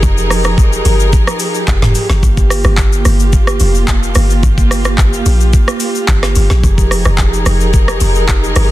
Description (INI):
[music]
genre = amapiano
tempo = 109 BPM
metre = 4/4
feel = straight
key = G phrygian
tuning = A4 = 441 Hz
[part]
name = dark studio string section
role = sustained chords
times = 0.0-8.7 s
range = F3 to Bb4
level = -17 LUFS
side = right 2 dB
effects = sidechain pumping
[part]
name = deep log drum bass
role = bass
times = 0.0-8.7 s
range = F1 to Bb1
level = -12 LUFS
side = equal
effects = none
[part]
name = smooth R&B drum kit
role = drums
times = 0.0-8.7 s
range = handclaps, hi-hat, kick drum, rim click, shaker, snare drum, toms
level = -13 LUFS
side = equal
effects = none
[sound]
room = digital ambience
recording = dense, heavily limited modern master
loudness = -9 LUFS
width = side -15 dB against mid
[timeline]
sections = 0.0-8.7 A section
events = none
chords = 0.0 Fm11; 2.2 Gm7; 6.6 Fm11